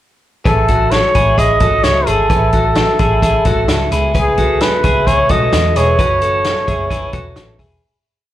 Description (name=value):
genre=jangly indie pop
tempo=130 BPM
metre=4/4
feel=straight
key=C# minor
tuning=A4 = 440 Hz
part: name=breathy trumpet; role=melody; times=0.5-7.6 s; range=G#4 to D#5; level=-15 LUFS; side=equal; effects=slapback echo, ping-pong delay
part: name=picked twelve-string acoustic guitar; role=accompaniment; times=0.5-7.8 s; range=F#2 to E4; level=-23 LUFS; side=right 6 dB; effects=slapback echo
part: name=twelve-string electric guitar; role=arpeggios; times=0.5-7.8 s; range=E4 to B4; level=-19 LUFS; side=left 3 dB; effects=spring reverb, slapback echo
part: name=vintage muted picked electric bass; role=bass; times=0.5-7.8 s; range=E1 to E2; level=-18 LUFS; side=equal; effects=none
part: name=vintage drum kit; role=drums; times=0.5-7.7 s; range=hi-hat, kick drum, snare drum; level=-17 LUFS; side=equal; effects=none
room=light reverb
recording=live gig heard through the venue's PA, club reverb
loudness=-11 LUFS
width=side -13 dB against mid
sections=0.5-7.8 verse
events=fade-out 6.0-7.8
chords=0.5 Amaj7; 3.9 C#m7